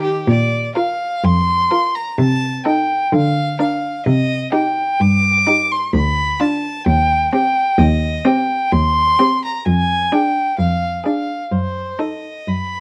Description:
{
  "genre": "quick classical-period movement for string quartet",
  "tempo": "128 BPM",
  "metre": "4/4",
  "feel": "straight",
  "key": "Bb major, C minor from 7.8 s",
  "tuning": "A4 = 440 Hz",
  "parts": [
    { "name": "clear violin", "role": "melody", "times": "0.0-12.8 s", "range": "C5 to D6", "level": "-20 LUFS", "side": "equal", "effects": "none" },
    { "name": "clear violin", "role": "second line", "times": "0.0-12.4 s", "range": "F4 to Bb4", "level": "-29 LUFS", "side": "equal", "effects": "none" },
    { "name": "clear viola", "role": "accompaniment", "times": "0.0-12.3 s", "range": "C4 to F4", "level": "-22 LUFS", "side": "equal", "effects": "none" },
    { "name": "rich cello", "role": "bass", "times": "0.0-12.8 s", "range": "D2 to D3", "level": "-19 LUFS", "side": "equal", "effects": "none" }
  ],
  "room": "light reverb",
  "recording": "worn, warbling old tape, cassette tape, warbly pitch drift",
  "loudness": "-17 LUFS",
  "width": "mono",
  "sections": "0.3-12.8 A section",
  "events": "none",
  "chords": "0.3 Bb; 2.2 Adim/C; 3.1 Bb/D; 4.1 Cm; 5.9 Bdim/D; 6.9 Cm/Eb; 9.7 Ddim/F; 11.5 F#dim7",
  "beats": "| 0.27 0.75 1.24 1.71 | 2.19 2.66 3.13 3.59 | 4.06 4.53 5.00 5.47 | 5.94 6.41 6.87 7.33 | 7.79 8.25 8.73 9.20 | 9.67 10.13 10.59 11.06 | 11.52 11.99 12.48"
}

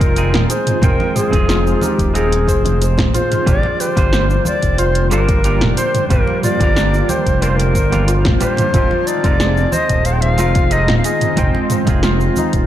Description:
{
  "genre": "organic downtempo",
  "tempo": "91 BPM",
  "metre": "4/4",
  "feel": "straight",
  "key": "F dorian",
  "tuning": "A4 = 440 Hz",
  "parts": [
    { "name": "Native American-style cedar flute", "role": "melody", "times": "0.0-11.7 s", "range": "G4 to G5", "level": "-20 LUFS", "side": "left 1 dB", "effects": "tape echo" },
    { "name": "semi-hollow electric guitar", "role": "accompaniment", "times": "0.0-12.7 s", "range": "G3 to G5", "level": "-24 LUFS", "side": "right 4 dB", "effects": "spring reverb, sidechain pumping, digital delay" },
    { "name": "airy breathy pad", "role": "sustained chords", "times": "0.0-12.7 s", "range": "D3 to F4", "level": "-25 LUFS", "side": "right 1 dB", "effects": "chorus, phaser, sidechain pumping" },
    { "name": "santur", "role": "arpeggios", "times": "0.0-12.7 s", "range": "D4 to C5", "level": "-23 LUFS", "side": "left 2 dB", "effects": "digital delay" },
    { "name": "smooth gliding synth bass", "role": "bass", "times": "0.0-12.7 s", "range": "Eb1 to G1", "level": "-17 LUFS", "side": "equal", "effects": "sidechain pumping" },
    { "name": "deep house drum kit", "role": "drums", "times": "0.0-12.7 s", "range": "cabasa, hi-hat, snare drum, toms", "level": "-21 LUFS", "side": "equal", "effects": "overdrive" },
    { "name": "electronic kick drum", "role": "drums", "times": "0.0-12.7 s", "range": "none", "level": "-18 LUFS", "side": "equal", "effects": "overdrive" },
    { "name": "congas", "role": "percussion", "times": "0.3-12.5 s", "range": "none", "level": "-23 LUFS", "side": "right 2 dB", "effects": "none" },
    { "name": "bronze singing bowl", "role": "texture", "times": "8.7-12.7 s", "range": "F4 to F5", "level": "-31 LUFS", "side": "left 6 dB", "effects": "none" }
  ],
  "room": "light reverb, studio ambience",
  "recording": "none",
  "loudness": "-12 LUFS",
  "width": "side -12 dB against mid",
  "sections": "0.0-12.7 A section",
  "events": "none",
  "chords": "0.0 Fm7; 3.5 Gm7; 8.7 Fm7",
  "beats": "0.17 | 0.82 1.49 2.14 2.80 | 3.46 4.12 4.78 5.44 | 6.10 6.76 7.42 8.08 | 8.74 9.40 10.06 10.71 | 11.38 12.03"
}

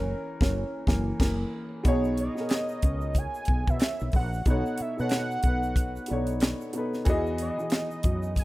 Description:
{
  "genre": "R&B, neo-soul",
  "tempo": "92 BPM",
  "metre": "4/4",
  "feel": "swing 58% on 16ths",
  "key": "B major",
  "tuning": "A4 = 439 Hz",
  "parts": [
    { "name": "warm upright piano", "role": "accompaniment", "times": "0.0-8.4 s", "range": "B2 to D#5", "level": "-31 LUFS", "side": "equal", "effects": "none" },
    { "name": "woody fretless electric bass", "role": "bass", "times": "0.0-8.4 s", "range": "F#1 to B2", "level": "-30 LUFS", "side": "equal", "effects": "analog chorus" },
    { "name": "tight funk drum kit", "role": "drums", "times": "0.4-8.4 s", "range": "crash cymbal, handclaps, hi-hat, kick drum, snare drum", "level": "-25 LUFS", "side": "equal", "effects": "none" },
    { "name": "egg shaker and finger snaps", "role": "percussion", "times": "1.9-8.4 s", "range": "none", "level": "-49 LUFS", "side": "left 1 dB", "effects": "none" },
    { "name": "fat analog lead", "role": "melody", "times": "2.2-8.4 s", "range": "D#5 to G#5", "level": "-33 LUFS", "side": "right 1 dB", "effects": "chorus" }
  ],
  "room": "small room ambience",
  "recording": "rough home demo mix",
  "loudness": "-25 LUFS",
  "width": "side -18 dB against mid",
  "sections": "0.0-1.8 A section; 1.8-8.4 B section",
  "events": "band accent 0.0-1.8; upright piano solo 0.0-1.8",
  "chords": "0.0 F#7; 1.8 B6; 4.5 B7; 7.1 Emaj7",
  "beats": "0.54 1.20 | 1.85 2.50 3.15 3.80 | 4.46 5.11 5.76 6.41 | 7.06 7.72 8.37"
}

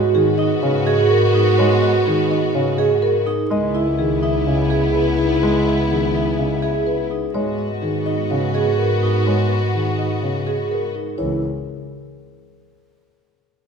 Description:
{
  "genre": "classical, minimalist pattern music",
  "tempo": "125 BPM",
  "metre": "4/4",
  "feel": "straight",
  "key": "C# dorian",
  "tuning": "A4 = 440 Hz",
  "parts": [
    { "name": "marimba with soft mallets", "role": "melody", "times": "0.0-11.4 s", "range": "G#4 to E5", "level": "-24 LUFS", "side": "left 9 dB", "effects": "none" },
    { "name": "mellow clarinet", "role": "second line", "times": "0.0-10.9 s", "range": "E4 to F#4", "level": "-24 LUFS", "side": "right 2 dB", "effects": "none" },
    { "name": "rich studio violin section", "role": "sustained chords", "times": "0.0-10.9 s", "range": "B3 to F#4", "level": "-26 LUFS", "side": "left 5 dB", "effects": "none" },
    { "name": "vibraphone with soft mallets", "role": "arpeggios", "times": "0.0-11.4 s", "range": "D#4 to G#4", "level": "-23 LUFS", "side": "right 8 dB", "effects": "none" },
    { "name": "bright studio double bass section", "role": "bass", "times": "0.0-11.4 s", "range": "C#2 to G#2", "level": "-23 LUFS", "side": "right 1 dB", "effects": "none" },
    { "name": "warm grand piano", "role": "accompaniment", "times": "0.1-11.4 s", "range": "C#3 to G#3", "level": "-24 LUFS", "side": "right 1 dB", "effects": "none" }
  ],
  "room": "moderate scoring stage reverb, RT60 2.0 s",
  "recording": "dark, warm production",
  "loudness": "-16 LUFS",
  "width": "side -6 dB against mid",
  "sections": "0.0-11.2 A section; 11.2-13.1 B section",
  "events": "none",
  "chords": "0.0 G#m11; 3.5 C#m7; 7.3 G#m11; 11.2 C#m",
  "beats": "0.14 0.62 1.10 | 1.58 2.06 2.54 3.02 | 3.50 3.98 4.46 4.94 | 5.42 5.90 6.38 6.86 | 7.34 7.82 8.30 8.78 | 9.26 9.74 10.22 10.70 | 11.18"
}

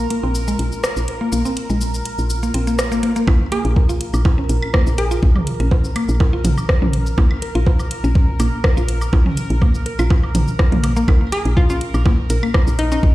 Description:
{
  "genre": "minimal techno",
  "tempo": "123 BPM",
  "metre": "4/4",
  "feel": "swing 53% on 16ths",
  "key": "unclear",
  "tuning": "A4 = 438 Hz",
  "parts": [
    { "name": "mallet-like synth pluck", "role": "riff", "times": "0.0-13.0 s", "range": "Ab3 to Bb4", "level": "-24 LUFS", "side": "left 1 dB", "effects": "chorus, sidechain pumping, tape echo" },
    { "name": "woody FM bass", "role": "bass", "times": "0.0-13.1 s", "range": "Ab1 to Bb1", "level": "-19 LUFS", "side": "equal", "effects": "sidechain pumping" },
    { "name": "bubbling stepped-filter texture", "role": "texture", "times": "0.0-13.1 s", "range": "Bb4", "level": "-31 LUFS", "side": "right 2 dB", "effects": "chorus, built-in reverb, sidechain pumping" },
    { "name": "granular cloud pad", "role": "texture", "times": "0.0-3.3 s", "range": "F4 to Bb5", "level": "-32 LUFS", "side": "right 1 dB", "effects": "built-in reverb, sidechain pumping" },
    { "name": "garage drum kit", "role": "drums", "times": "0.1-13.0 s", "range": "cabasa, hi-hat, rim click", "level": "-26 LUFS", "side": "equal", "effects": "high-pass filter on perc, studio reverb, high-pass filter on hats, high-pass filter on snare" },
    { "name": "electronic kick drum", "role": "drums", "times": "3.3-13.1 s", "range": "none", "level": "-15 LUFS", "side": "equal", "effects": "studio reverb" },
    { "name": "electronic bongos, woodblock and toms", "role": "percussion", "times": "3.3-13.1 s", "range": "none", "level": "-25 LUFS", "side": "right 2 dB", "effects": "studio reverb, ping-pong delay" },
    { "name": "hollow square pluck", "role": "melody", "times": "3.5-5.5, 11.3-13.0 s", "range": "Eb4 to Ab4", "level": "-24 LUFS", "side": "left 1 dB", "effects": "chorus, ping-pong delay" }
  ],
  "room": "light reverb",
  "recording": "played on a big sound system in a bare room, large studio reverb",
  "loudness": "-15 LUFS",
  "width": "side -16 dB against mid",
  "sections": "0.0-3.3 A section; 3.3-13.1 B section",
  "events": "build-up 0.0-3.3; filter sweep on synth arpeggio sound 0.0-3.3; drop 3.3-13.1",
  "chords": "0.0 Bb5",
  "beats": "0.35 0.84 | 1.32 1.81 2.30 2.79 | 3.27 3.76 4.25 4.74 | 5.23 5.71 6.20 6.69 | 7.18 7.67 8.15 8.64 | 9.13 9.62 10.10 10.59 | 11.08 11.57 12.05 12.54 | 13.03"
}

